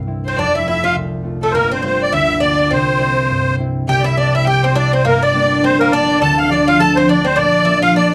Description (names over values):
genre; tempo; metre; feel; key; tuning
celtic folk, Celtic reel; 206 BPM; 4/4; swing 57% on 8ths; C mixolydian; A4 = 440 Hz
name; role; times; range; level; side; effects
concert harp; accompaniment; 0.0-8.1 s; D1 to F4; -19 LUFS; equal; none
clear fiddle; second line; 0.2-8.1 s; A4 to A5; -27 LUFS; equal; none
musette accordion; melody; 0.3-8.1 s; A4 to A5; -18 LUFS; equal; none
Irish bouzouki; second line; 0.3-8.1 s; A3 to A4; -23 LUFS; equal; none
room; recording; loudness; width
moderate studio reverb, RT60 0.6 s; close, detailed microphones, vinyl crackle; -15 LUFS; mono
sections
0.0-3.9 A section; 3.9-8.1 B section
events
none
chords
0.4 F; 1.5 Gm7; 2.7 C; 5.0 Gm; 6.2 Dm; 7.4 Bb